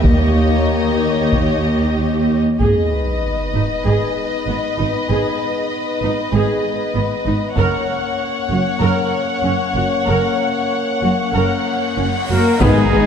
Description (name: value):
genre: cinematic, epic orchestral film score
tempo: 96 BPM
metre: 4/4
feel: straight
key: G# minor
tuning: A4 = 440 Hz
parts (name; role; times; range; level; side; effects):
- warm studio violin section; melody; 0.0-13.1 s; D#4 to F#5; -23 LUFS; left 4 dB; none
- warm symphonic violin section; second line; 0.0-13.0 s; B3 to C#5; -25 LUFS; left 3 dB; none
- warm symphonic viola section; accompaniment; 0.0-13.0 s; D#3 to A#4; -24 LUFS; right 2 dB; none
- warm French horn section; sustained chords; 0.0-13.1 s; G#3 to D#4; -23 LUFS; left 4 dB; none
- rich symphonic cello section; bass; 0.0-13.1 s; D#2 to A#3; -22 LUFS; right 2 dB; none
- rich symphonic double bass section; bass; 0.0-13.0 s; F#1 to D#2; -22 LUFS; right 3 dB; none
- taiko ensemble; drums; 0.0-8.8, 12.6-13.1 s; none; -20 LUFS; equal; none
- sub drop, cymbal swell and impact; sound effects; 2.6-5.1, 11.6-13.1 s; none; -25 LUFS; equal; none
- hollow concert flute; second line; 12.3-13.1 s; G#4 to A#4; -23 LUFS; left 7 dB; none
- clear trumpet; stabs; 12.3-13.1 s; G#4 to A#4; -21 LUFS; equal; none
- warm trombone section; sustained chords; 12.6-12.8 s; D#3 to B3; -25 LUFS; right 2 dB; none
- warm woodwind section; sustained chords; 12.6-13.1 s; G#3 to D#5; -29 LUFS; equal; none
- timpani; percussion; 12.6-13.1 s; G#2; -20 LUFS; left 1 dB; none
room: moderate concert hall reverb, RT60 2.4 s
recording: dark, warm production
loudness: -15 LUFS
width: side -7 dB against mid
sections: 0.0-2.6 A section; 2.6-12.6 B section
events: impact 2.6-5.1, 12.6-13.1; cymbal swell 11.6-12.6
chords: 0.0 D#7; 2.6 G#m; 7.6 F#